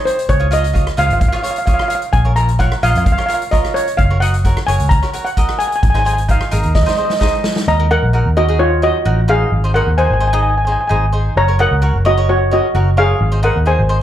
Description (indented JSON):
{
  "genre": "calypso",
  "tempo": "130 BPM",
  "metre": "4/4",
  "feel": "straight",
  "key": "unclear",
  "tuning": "A4 = 441 Hz",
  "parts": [
    { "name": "steel pan", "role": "melody", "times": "0.0-14.0 s", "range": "F4 to Bb5", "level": "-16 LUFS", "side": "equal", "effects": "plate reverb, slapback echo, digital delay" },
    { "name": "cavaquinho", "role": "accompaniment", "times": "0.0-14.0 s", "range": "Eb4 to Eb5", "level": "-23 LUFS", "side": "right 1 dB", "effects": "plate reverb, slapback echo" },
    { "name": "street-band drum kit", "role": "drums", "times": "0.1-7.7 s", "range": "hi-hat, kick drum, rim click, snare drum", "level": "-18 LUFS", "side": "equal", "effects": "none" },
    { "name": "vintage muted fingered electric bass", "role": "bass", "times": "0.3-14.0 s", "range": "Gb1 to F2", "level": "-15 LUFS", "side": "equal", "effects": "none" }
  ],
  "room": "little or no reverb",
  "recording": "live gig heard through the venue's PA, club reverb",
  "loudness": "-12 LUFS",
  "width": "side -11 dB against mid",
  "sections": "0.0-7.7 A section; 7.7-14.0 B section",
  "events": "drum fill 6.8-7.7",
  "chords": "0.3 Db; 2.1 Bbm; 4.0 Gb; 5.8 Ab; 7.7 Ebmadd9; 9.5 Ab; 11.4 Gb; 13.2 Abadd9"
}